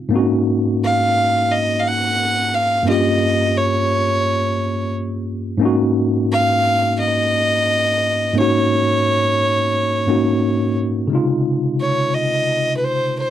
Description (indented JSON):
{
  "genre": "soul",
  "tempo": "87 BPM",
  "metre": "4/4",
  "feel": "swing 54% on 16ths",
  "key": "unclear",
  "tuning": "A4 = 440 Hz",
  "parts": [
    { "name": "tine electric piano", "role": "accompaniment", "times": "0.0-13.3 s", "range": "G2 to G4", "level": "-18 LUFS", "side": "equal", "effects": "overdrive, fast stereo tremolo" },
    { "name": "rich fiddle", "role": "melody", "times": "0.8-13.3 s", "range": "Cb5 to Gb5", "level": "-18 LUFS", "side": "right 1 dB", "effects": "none" }
  ],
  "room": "light reverb",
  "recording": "dry, close 1970s-style studio recording",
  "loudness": "-15 LUFS",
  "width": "side -11 dB against mid",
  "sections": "0.1-11.1 A section; 11.1-13.3 B section",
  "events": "none",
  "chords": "0.1 Ab7sus4; 2.9 Eb7/G; 5.6 Ab7sus4; 11.1 Dbmaj9"
}